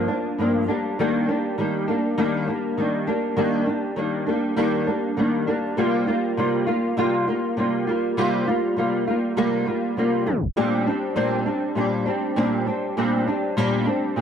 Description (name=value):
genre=indie pop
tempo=100 BPM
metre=4/4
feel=straight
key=Bb major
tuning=A4 = 440 Hz
part: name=flamenco guitar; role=solo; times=0.0-14.2 s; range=G2 to F4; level=-20 LUFS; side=equal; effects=analog chorus, vibrato effect, analog delay
room=light reverb, studio reverb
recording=tape stop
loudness=-20 LUFS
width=side -8 dB against mid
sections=0.0-10.6 A section; 10.6-14.2 B section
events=tape stop 10.3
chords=0.0 Gm7; 0.7 Ebmaj7; 5.8 C7sus4; 10.6 Bb69